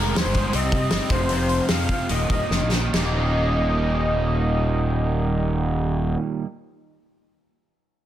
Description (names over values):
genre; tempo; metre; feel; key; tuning
indie rock; 138-163 BPM; 4/4; straight; Eb major; A4 = 439 Hz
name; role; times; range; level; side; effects
wide unison lead; melody; 0.0-6.2 s; Bb4 to F5; -27 LUFS; left 1 dB; slapback echo
cranked stack guitar; riff; 0.0-6.5 s; Eb2 to Eb4; -27 LUFS; right 6 dB; overdrive, analog chorus, slapback echo
twangy electric guitar; riff; 0.0-6.5 s; Eb2 to Eb4; -31 LUFS; left 6 dB; ensemble chorus
fuzz fingered electric bass; bass; 0.0-6.1 s; Eb1 to C3; -24 LUFS; equal; overdrive
loose indie drum kit; drums; 0.2-3.0 s; crash cymbal, hi-hat, kick drum, snare drum; -25 LUFS; equal; none
room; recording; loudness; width
light reverb, small room reverb; dense, heavily limited modern master; -20 LUFS; side -12 dB against mid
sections
0.0-2.9 A section; 2.9-6.4 B section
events
slowing down 0.0-2.9; drum fill 2.5-2.9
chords
0.0 Ab; 0.5 Cm; 1.1 F5; 2.1 Eb5; 2.9 Eb